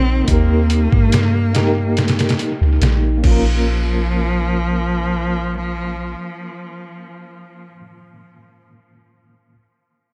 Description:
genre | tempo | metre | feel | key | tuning
trip hop | 71 BPM | 4/4 | straight | Bb dorian | A4 = 440 Hz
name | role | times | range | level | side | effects
rich cello | melody | 0.0-7.7 s | F3 to C4 | -25 LUFS | equal | vintage 12-bit sampler grit, tape echo
mellow reed electric piano | accompaniment | 0.0-9.6 s | Db3 to Bb4 | -26 LUFS | equal | fast tremolo, tape echo
warbly tape-like pad | sustained chords | 0.1-3.2 s | Eb4 | -33 LUFS | equal | none
soft 808-style bass | bass | 0.0-6.2 s | Bb1 to G2 | -20 LUFS | equal | tube saturation
trip hop sampler-style drum kit | drums | 0.3-3.4 s | crash cymbal, hi-hat, kick drum, snare drum | -21 LUFS | equal | analog delay
room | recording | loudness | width
little or no reverb | echo-heavy mix | -17 LUFS | mono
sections
0.0-3.7 A section; 3.7-7.0 B section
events
none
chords
0.3 Eb; 3.2 Bbm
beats
| 0.28 1.12 1.97 2.81 | 3.66 4.50 5.35 6.20

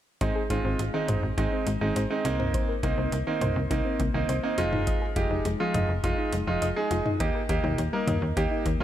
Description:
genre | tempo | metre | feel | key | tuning
synth-pop | 103 BPM | 4/4 | straight | Ab major | A4 = 444 Hz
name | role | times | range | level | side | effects
bright concert grand piano | accompaniment | 0.2-8.8 s | Ab3 to Bb4 | -28 LUFS | right 3 dB | none
soft round pluck | arpeggios | 0.2-8.8 s | Eb3 to Eb5 | -32 LUFS | left 4 dB | chorus, tape echo
slap-like FM bass | bass | 0.2-8.8 s | F1 to Eb2 | -29 LUFS | equal | none
electro analog drum machine | drums | 0.2-8.8 s | hi-hat, kick drum, toms | -30 LUFS | equal | none
room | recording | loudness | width
light reverb, digital ambience | none | -24 LUFS | side -11 dB against mid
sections
0.2-8.8 A section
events
none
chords
0.2 Ab; 2.2 Cm7; 4.6 Fm7; 7.2 Eb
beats
| 0.21 0.79 1.38 1.96 | 2.54 3.12 3.71 4.29 | 4.87 5.45 6.04 6.62 | 7.20 7.78 8.37

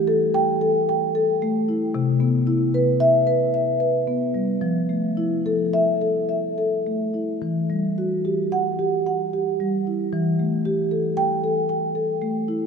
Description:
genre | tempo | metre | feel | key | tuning
classical, contemporary piece for solo marimba | 110 BPM | 5/4 | uneven beats, rubato | unclear | A4 = 439 Hz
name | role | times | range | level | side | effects
marimba with soft mallets | solo | 0.0-12.7 s | C3 to G5 | -20 LUFS | equal | none
room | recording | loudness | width
wet cathedral reverb, RT60 4.6 s | none | -20 LUFS | side -6 dB against mid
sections
0.0-12.7 A section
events
none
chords
0.0 A5/E; 1.9 Cmaj7; 4.6 Fmaj7; 7.4 Emadd9; 10.1 A5/E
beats
0.34 0.88 1.41 | 1.95 2.47 3.00 3.53 4.07 | 4.62 5.17 5.73 6.29 6.85 | 7.42 7.97 8.52 9.05 9.59 | 10.12 10.65 11.17 11.69 12.21

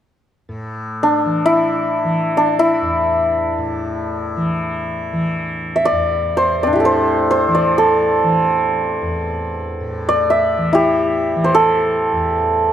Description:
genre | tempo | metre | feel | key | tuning
indian classical | free time | none | none | E raga malkauns | A4 = 441 Hz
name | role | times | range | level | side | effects
tanpura | drone | 0.5-12.7 s | E2 to E3 | -23 LUFS | equal | none
santur | melody | 1.0-12.7 s | C4 to E5 | -15 LUFS | equal | none
room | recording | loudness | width
moderate recital hall reverb, RT60 1.8 s | dark, warm production | -15 LUFS | side -10 dB against mid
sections
0.5-12.7 A section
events
none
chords
none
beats
free time

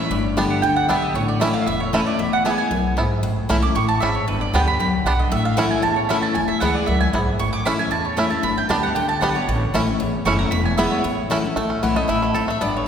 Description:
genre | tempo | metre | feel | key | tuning
bluegrass | 230 BPM | 4/4 | straight | A major | A4 = 442 Hz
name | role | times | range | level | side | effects
picked steel-string acoustic guitar | accompaniment | 0.0-12.9 s | E2 to G4 | -22 LUFS | left 3 dB | none
mandolin | stabs | 0.0-11.3 s | B4 to D6 | -23 LUFS | right 4 dB | none
upright bass | bass | 0.1-12.9 s | E1 to E2 | -26 LUFS | equal | none
bluegrass banjo | melody | 0.4-12.9 s | A3 to A4 | -25 LUFS | right 2 dB | none
mandolin | melody | 11.8-12.9 s | A4 to F#5 | -25 LUFS | left 3 dB | none
room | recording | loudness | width
wet concert hall reverb, RT60 2.3 s | recorded in a church or concert hall | -18 LUFS | side -8 dB against mid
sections
0.0-11.6 A section; 11.6-12.9 B section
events
mandolin solo 0.0-11.6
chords
0.1 G; 1.2 A; 2.2 E; 3.2 A; 4.3 G; 5.3 A; 6.4 E; 7.4 A; 8.4 G; 9.5 A; 10.5 E; 11.0 A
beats
| 0.11 0.37 0.63 0.89 | 1.15 1.41 1.67 1.93 | 2.19 2.45 2.71 2.97 | 3.23 3.50 3.75 4.01 | 4.28 4.54 4.80 5.06 | 5.32 5.58 5.84 6.10 | 6.36 6.62 6.88 7.14 | 7.40 7.66 7.92 8.18 | 8.44 8.70 8.96 9.22 | 9.48 9.74 10.00 10.26 | 10.52 10.78 11.04 11.30 | 11.56 11.82 12.08 12.34 | 12.61 12.87

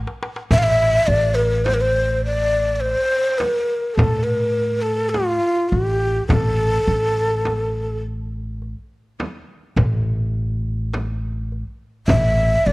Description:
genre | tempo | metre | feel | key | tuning
Arabic maqam ensemble | 104 BPM (eighths) | 10/8 | straight | A maqam bayati | A4 = 438 Hz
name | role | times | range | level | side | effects
upright bass | bass | 0.0-12.7 s | A1 to A2 | -22 LUFS | equal | none
darbuka | percussion | 0.1-12.7 s | none | -23 LUFS | left 1 dB | none
breathy ney | melody | 0.5-12.7 s | F4 to F5 | -18 LUFS | equal | none
frame drum | percussion | 0.5-12.4 s | none | -25 LUFS | right 1 dB | none
room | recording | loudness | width
light reverb | worn, warbling old tape, cassette tape, warbly pitch drift | -17 LUFS | side -22 dB against mid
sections
0.5-12.7 A section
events
drum fill 0.0-0.5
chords
none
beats
| 0.51 1.09 1.67 2.25 2.82 3.40 3.98 4.56 5.14 5.72 | 6.30 6.88 7.46 8.03 8.61 9.19 9.77 10.35 10.93 11.51 | 12.09 12.66

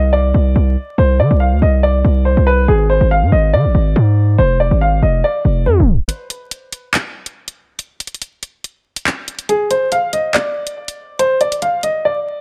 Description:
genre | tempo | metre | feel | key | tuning
hip hop, drill | 141 BPM | 4/4 | half-time | unclear | A4 = 440 Hz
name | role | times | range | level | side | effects
clear baby grand piano | melody | 0.0-6.0, 9.5-12.4 s | Ab4 to F5 | -19 LUFS | equal | low-pass filter
distorted 808-style bass | bass | 0.0-6.1 s | F1 to Eb3 | -14 LUFS | equal | distortion
drill drum kit | drums | 6.1-11.9 s | handclaps, hi-hat | -22 LUFS | equal | none
room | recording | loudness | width
digital ambience | vinyl crackle, tape stop | -15 LUFS | mono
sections
0.0-6.1 A section; 6.1-12.4 B section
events
tape stop 5.7-6.1; break 6.1-12.4; drums muted 12.0-12.4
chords
0.0 Csus2; 2.7 Ab5; 4.4 Fm; 6.1 N.C.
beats
0.13 0.56 | 0.98 1.41 1.83 2.26 | 2.68 3.11 3.53 3.96 | 4.38 4.81 5.24 5.66 | 6.09 6.51 6.94 7.36 | 7.79 8.21 8.64 9.07 | 9.49 9.92 10.34 10.77 | 11.19 11.62 12.04

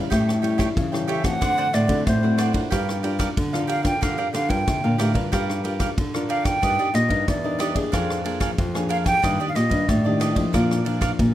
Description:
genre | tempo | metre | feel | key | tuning
samba and choro | 92 BPM | 4/4 | straight | G minor | A4 = 439 Hz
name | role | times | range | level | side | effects
cavaquinho | accompaniment | 0.0-11.1 s | D4 to Ab5 | -28 LUFS | right 5 dB | none
nylon-string guitar | accompaniment | 0.0-11.3 s | F2 to Bb4 | -28 LUFS | left 4 dB | none
nylon-string guitar | bass | 0.1-11.3 s | E2 to D3 | -24 LUFS | equal | none
swinging big-band drum kit | drums | 0.1-11.3 s | kick drum, ride cymbal, rim click | -26 LUFS | equal | none
breathy silver concert flute | melody | 1.1-10.4 s | C5 to G5 | -24 LUFS | right 1 dB | plate reverb
room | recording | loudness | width
light reverb | none | -19 LUFS | side -12 dB against mid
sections
0.0-5.3 A section; 5.3-11.3 A section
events
none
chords
0.1 A7; 1.4 D7; 2.7 Gm7; 6.6 Ebmaj7/G; 7.9 Bb7/F; 9.2 Ebmaj7/G; 10.5 Bb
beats
| 0.11 0.76 1.41 2.06 | 2.72 3.37 4.02 4.67 | 5.32 5.97 6.62 7.28 | 7.93 8.58 9.23 9.88 | 10.54 11.19

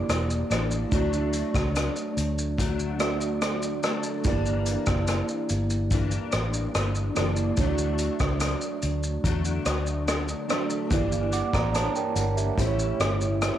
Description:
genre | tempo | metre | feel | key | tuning
indie pop, bedroom pop | 72 BPM | 4/4 | straight | D major | A4 = 440 Hz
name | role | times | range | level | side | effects
mellow tine electric piano | accompaniment | 0.0-13.6 s | A3 to D6 | -30 LUFS | right 7 dB | medium stereo tremolo, cassette tape
picked steel-string acoustic guitar | accompaniment | 0.0-13.6 s | G2 to E4 | -31 LUFS | left 7 dB | ensemble chorus, warbly pitch drift
vintage muted fingered electric bass | bass | 0.1-13.5 s | E1 to E2 | -28 LUFS | equal | none
unplugged drum kit | drums | 0.1-13.6 s | hi-hat, kick drum, rim click, shaker | -28 LUFS | equal | cassette tape
room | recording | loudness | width
light reverb | home recording on cassette | -24 LUFS | side -11 dB against mid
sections
0.0-13.6 A section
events
none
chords
0.0 Gm6; 0.9 D; 4.3 Gm6; 7.6 D; 10.9 Gm6; 12.6 A7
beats
0.09 | 0.92 1.75 2.59 3.42 | 4.25 5.08 5.92 6.75 | 7.58 8.41 9.25 10.08 | 10.91 11.74 12.58 13.41

